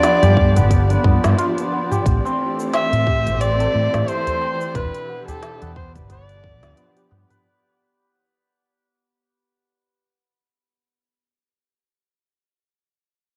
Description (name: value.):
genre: organic downtempo.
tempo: 89 BPM.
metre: 4/4.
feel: swing 58% on 16ths.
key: unclear.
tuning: A4 = 437 Hz.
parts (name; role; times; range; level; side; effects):
warm kamancheh; melody; 0.0-7.1 s; A4 to E5; -24 LUFS; equal; cassette tape, analog delay.
bell-like tine electric piano; accompaniment; 0.0-7.5 s; B2 to G4; -32 LUFS; equal; sidechain pumping, cassette tape, analog delay.
dark studio string section; sustained chords; 0.0-7.5 s; B2 to D5; -30 LUFS; equal; sidechain pumping, cassette tape.
santur; arpeggios; 0.0-11.2 s; B3 to C5; -27 LUFS; equal; cassette tape, analog delay.
organic electronic drum kit; drums; 0.0-7.4 s; hi-hat, shaker, snare drum, toms; -28 LUFS; equal; cassette tape.
bronze singing bowl; texture; 0.0-7.5 s; none; barely audible; none; none.
mellow fretless electric bass; bass; 0.2-7.2 s; E1 to A2; -20 LUFS; equal; subtle chorus.
electronic kick drum; drums; 0.4-6.6 s; none; -22 LUFS; equal; cassette tape.
udu; percussion; 4.3-5.4 s; none; -33 LUFS; equal; none.
room: small room ambience.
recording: home recording on cassette.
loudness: -18 LUFS.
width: mono.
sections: 0.0-7.4 A section.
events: fade-out 0.3-7.4.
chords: 0.0 G7; 2.1 Am7; 4.8 Em7; 6.1 G7.